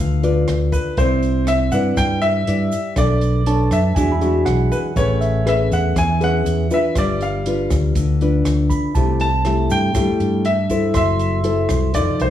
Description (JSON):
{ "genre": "bossa nova", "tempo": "120 BPM", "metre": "4/4", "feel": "straight", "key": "C major from 9.0 s", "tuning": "A4 = 439 Hz", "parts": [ { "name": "clear baby grand piano", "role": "melody", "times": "0.0-12.3 s", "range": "B4 to A5", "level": "-22 LUFS", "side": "left 1 dB", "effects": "none" }, { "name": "nylon-string guitar", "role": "accompaniment", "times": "0.0-12.3 s", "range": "C3 to D5", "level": "-20 LUFS", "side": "left 2 dB", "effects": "none" }, { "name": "fingered electric bass", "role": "bass", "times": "0.0-12.3 s", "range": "F1 to G2", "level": "-19 LUFS", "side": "equal", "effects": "none" }, { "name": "compact cocktail drum kit", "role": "drums", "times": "0.2-12.3 s", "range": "hi-hat, kick drum, rim click", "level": "-25 LUFS", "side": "right 1 dB", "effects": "none" }, { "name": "egg shaker", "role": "percussion", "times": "0.2-12.3 s", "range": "none", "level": "-41 LUFS", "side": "right 4 dB", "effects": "none" }, { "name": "barky tine electric piano", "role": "accompaniment", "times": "3.5-12.2 s", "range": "E5 to C6", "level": "-29 LUFS", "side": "right 4 dB", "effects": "overdrive" } ], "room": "light reverb", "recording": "studio reverb", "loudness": "-15 LUFS", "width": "side -11 dB against mid", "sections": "0.0-9.0 A section; 9.0-12.3 B section", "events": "none", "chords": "0.0 G7 (rootless); 1.0 Cmaj9; 3.0 Bm9; 4.0 E9; 5.0 Amaj9; 7.0 G7; 9.0 C6; 11.0 F#m7b5" }